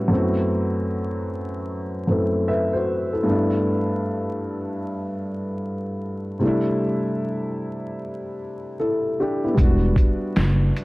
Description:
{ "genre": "lo-fi hip hop", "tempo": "76 BPM", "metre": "4/4", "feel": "swing 64% on 16ths", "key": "unclear", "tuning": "A4 = 440 Hz", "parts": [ { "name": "dark upright piano", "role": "accompaniment", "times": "0.0-10.8 s", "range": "F#2 to E5", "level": "-22 LUFS", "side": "equal", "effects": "cassette tape" }, { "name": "upright bass", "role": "bass", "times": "9.6-10.7 s", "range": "E1 to F#1", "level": "-19 LUFS", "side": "equal", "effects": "none" }, { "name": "lo-fi sampler-style drum kit", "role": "drums", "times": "9.6-10.8 s", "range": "hi-hat, kick drum, snare drum", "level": "-19 LUFS", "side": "equal", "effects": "none" } ], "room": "moderate spring reverb, RT60 2.0 s", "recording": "dark, warm production, vinyl crackle", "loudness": "-21 LUFS", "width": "side -21 dB against mid", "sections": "0.0-9.6 A section; 9.6-10.8 B section", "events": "none", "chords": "0.1 Am69/F#; 3.3 G69; 6.4 C69; 9.6 Em9", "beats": "| 0.10 0.89 1.68 2.47 | 3.26 4.05 4.84 5.63 | 6.42 7.21 8.00 8.79 | 9.57 10.36" }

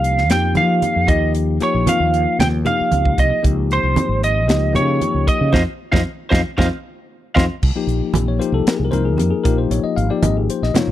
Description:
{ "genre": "electric jazz fusion", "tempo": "115 BPM", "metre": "4/4", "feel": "straight", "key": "F minor", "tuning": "A4 = 441 Hz", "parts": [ { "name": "lightly driven lead guitar", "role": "melody", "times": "0.0-7.4 s", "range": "C5 to G5", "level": "-19 LUFS", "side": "right 2 dB", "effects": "slapback echo" }, { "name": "bell-like tine electric piano", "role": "accompaniment", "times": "0.0-10.9 s", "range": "F3 to F5", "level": "-21 LUFS", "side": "left 7 dB", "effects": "none" }, { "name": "mellow fretless electric bass", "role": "bass", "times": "0.0-10.9 s", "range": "Ab1 to F3", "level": "-19 LUFS", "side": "right 1 dB", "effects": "none" }, { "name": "crisp fusion drum kit", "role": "drums", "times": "0.0-10.9 s", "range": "crash cymbal, hi-hat, kick drum, snare drum", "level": "-20 LUFS", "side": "equal", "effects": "none" }, { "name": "congas", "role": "percussion", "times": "0.3-10.9 s", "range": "none", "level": "-23 LUFS", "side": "right 4 dB", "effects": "none" } ], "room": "small room ambience", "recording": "dry, close 1970s-style studio recording", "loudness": "-15 LUFS", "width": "side -13 dB against mid", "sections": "0.0-7.6 A section; 7.6-10.9 B section", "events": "band accent 5.5-7.6", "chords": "0.0 F5; 1.1 Ebadd9; 3.4 Dbmaj9; 5.5 F5; 7.6 Cm7; 9.4 Bb7sus4", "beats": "0.29 0.81 | 1.34 1.86 2.39 2.92 | 3.44 3.96 4.49 5.01 | 5.54 6.06 6.58 7.11 | 7.63 8.15 8.67 9.19 | 9.71 10.23 10.75" }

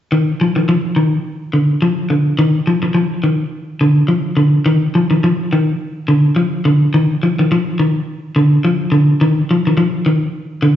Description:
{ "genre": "afrobeat", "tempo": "106 BPM", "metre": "4/4", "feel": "swing 56% on 16ths", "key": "unclear", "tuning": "A4 = 439 Hz", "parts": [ { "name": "electric guitar at the edge of break-up", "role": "arpeggios", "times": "0.1-10.8 s", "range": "D3 to F3", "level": "-12 LUFS", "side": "equal", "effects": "slapback echo" } ], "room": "moderate club reverb, RT60 0.6 s", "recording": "live gig heard through the venue's PA, recital hall reverb, nothing above 7.7 kHz", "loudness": "-12 LUFS", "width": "side -11 dB against mid", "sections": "0.1-10.8 A section", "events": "none", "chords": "none", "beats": "| 0.11 0.68 1.25 1.82 | 2.39 2.96 3.52 4.09 | 4.66 5.23 5.80 6.37 | 6.94 7.51 8.07 8.64 | 9.21 9.78 10.34" }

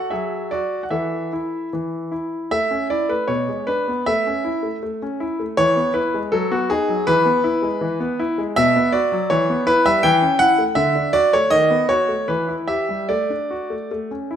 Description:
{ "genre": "classical-period piano sonatina", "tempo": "74-82 BPM", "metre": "2/4", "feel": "rubato", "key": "A major, D major from 8.6 s", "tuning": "A4 = 440 Hz", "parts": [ { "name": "clear grand piano", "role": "solo", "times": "0.0-14.4 s", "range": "B2 to G5", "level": "-17 LUFS", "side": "equal", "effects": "none" } ], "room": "moderate recital hall reverb, RT60 1.4 s", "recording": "none", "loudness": "-17 LUFS", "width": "side -9 dB against mid", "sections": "0.0-2.5 A section; 2.5-14.4 B section", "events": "none", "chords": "0.0 D/F#; 0.9 A5/E; 1.7 N.C.; 2.5 A; 3.3 Bm69; 4.1 A; 5.6 E; 6.3 B/F#; 7.1 E; 8.6 Bm; 9.3 Em; 10.0 A7/E; 10.8 D; 11.5 B7/D#; 12.3 Em; 13.1 D/A", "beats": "0.12 | 0.92 1.73 | 2.52 3.29 | 4.07 4.83 | 5.59 6.34 | 7.08 7.83 | 8.58 9.31 | 10.05 10.79 | 11.53 12.31 | 13.11 13.91" }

